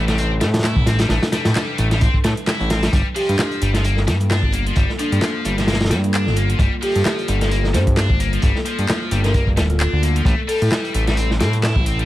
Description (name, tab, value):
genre	breakbeat, breaks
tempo	131 BPM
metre	4/4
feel	swing 56% on 16ths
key	G dorian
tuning	A4 = 441 Hz
part	warbly tape-like pad	sustained chords	0.0-12.1 s	C3 to B4	-28 LUFS	left 1 dB	chorus, built-in reverb, phaser, vintage 12-bit sampler grit, sidechain pumping
part	heavy high-gain guitar	riff	0.0-12.1 s	F3 to E4	-25 LUFS	left 2 dB	distortion, vintage 12-bit sampler grit, ping-pong delay
part	fat analog bass	bass	0.0-12.0 s	D1 to A2	-19 LUFS	equal	none
part	crunchy breakbeat drum kit	drums	0.1-12.0 s	hi-hat, kick drum, snare drum	-20 LUFS	equal	none
part	house drum kit	drums	0.1-12.1 s	handclaps, hi-hat	-28 LUFS	equal	none
part	marimba with soft mallets	melody	3.2-10.7 s	D4 to C5	-26 LUFS	equal	AM radio sound, ping-pong delay
room	small room ambience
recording	vinyl crackle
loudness	-16 LUFS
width	side -15 dB against mid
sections	0.0-12.1 A section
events	none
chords	0.0 Am9; 2.9 Gm9; 10.3 Am9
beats	0.18 0.64 | 1.10 1.56 2.01 2.47 | 2.93 3.39 3.85 4.30 | 4.76 5.22 5.68 6.14 | 6.59 7.05 7.51 7.97 | 8.43 8.88 9.34 9.80 | 10.26 10.72 11.18 11.63